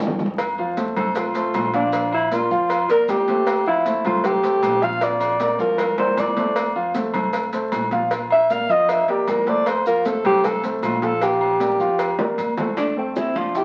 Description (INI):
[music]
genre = Afro-Cuban jazz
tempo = 155 BPM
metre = 4/4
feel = straight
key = F major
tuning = A4 = 440 Hz
[part]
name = warm grand piano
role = accompaniment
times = 0.0-13.6 s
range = E3 to G5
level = -27 LUFS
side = equal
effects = none
[part]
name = upright bass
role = bass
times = 0.0-13.6 s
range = Bb1 to F2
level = -40 LUFS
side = equal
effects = none
[part]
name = maracas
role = percussion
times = 0.0-13.6 s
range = none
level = -49 LUFS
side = equal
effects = none
[part]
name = timbales and agogo bells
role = percussion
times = 0.0-13.6 s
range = none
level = -30 LUFS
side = equal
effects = none
[part]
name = bongos and cowbell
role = percussion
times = 0.1-13.6 s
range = none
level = -32 LUFS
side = equal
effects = none
[part]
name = congas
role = percussion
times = 0.1-13.6 s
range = none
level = -33 LUFS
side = equal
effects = none
[part]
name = breathy alto saxophone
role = melody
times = 1.0-13.6 s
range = C4 to F5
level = -22 LUFS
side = equal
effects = none
[part]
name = breathy tenor saxophone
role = second line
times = 12.8-13.6 s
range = A3 to E4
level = -31 LUFS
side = equal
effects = none
[sound]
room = wet studio reverb, RT60 0.8 s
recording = very old 78 rpm record, vinyl crackle, nothing above 10.5 kHz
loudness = -20 LUFS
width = mono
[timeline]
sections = 0.4-12.8 A section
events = drum fill 0.0-0.4, 5.0-6.6, 12.2-12.8; alto saxophone solo 0.4-12.8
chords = 0.4 F; 1.9 Bb6; 3.5 Fadd9; 5.0 Bb; 6.6 F; 8.1 Bb; 9.7 F; 11.2 Bb6; 12.8 F